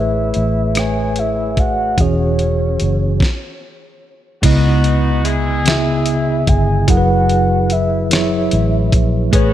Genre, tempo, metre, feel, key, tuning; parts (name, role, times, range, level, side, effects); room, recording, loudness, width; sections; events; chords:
slow six-eight R&B; 49 BPM (dotted quarters); 6/8; straight; C# minor; A4 = 436 Hz
soft octave-layered synth lead; melody; 0.0-9.0 s; C#5 to G#5; -21 LUFS; equal; chorus, tremolo, diffuse ambient delay
mellow tine electric piano; accompaniment; 0.0-9.5 s; C#3 to D#5; -18 LUFS; right 1 dB; medium stereo tremolo
vintage muted fingered electric bass; bass; 0.0-9.5 s; E1 to C#2; -18 LUFS; equal
dusty soul sampler-style drum kit; drums; 0.3-9.5 s; crash cymbal, hi-hat, kick drum, rim click, snare drum; -17 LUFS; equal
warm horn section; stabs; 4.4-9.5 s; G#3 to G#4; -23 LUFS; left 1 dB; diffuse ambient delay
light reverb, digital ambience; -13 LUFS; side -12 dB against mid
0.0-4.4 A section; 4.4-9.5 B section
stop 3.2-4.4
0.0 Amaj9; 2.0 E69; 4.4 C#m9; 6.9 F#9sus4